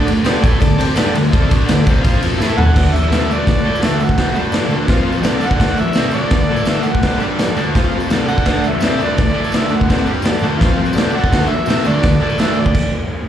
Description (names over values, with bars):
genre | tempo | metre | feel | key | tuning
garage rock duo or trio | 168 BPM | 4/4 | straight | D major | A4 = 440 Hz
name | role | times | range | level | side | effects
combo organ | sustained chords | 0.0-12.6 s | E4 to A5 | -26 LUFS | equal | none
thick fuzz guitar | riff | 0.0-12.7 s | C3 to D5 | -18 LUFS | equal | distortion, slapback echo
raw garage drum kit | drums | 0.1-12.8 s | crash cymbal, kick drum, ride cymbal, snare drum, toms | -15 LUFS | equal | none
tambourine | percussion | 0.1-12.7 s | none | -40 LUFS | left 2 dB | none
clear harmonica | melody | 2.6-12.9 s | D5 to F#5 | -22 LUFS | equal | overdrive, slapback echo
room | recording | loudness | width
moderate club reverb, RT60 0.7 s | live gig heard through the venue's PA, club reverb | -13 LUFS | side -10 dB against mid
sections
0.0-2.8 A section; 2.8-13.3 B section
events
drum fill 2.4-2.8; stop 12.7-13.3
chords
0.0 D; 2.0 F5; 2.4 A5; 2.8 D; 4.9 F5; 5.3 D; 7.8 F5; 8.1 D; 10.6 F5; 11.0 D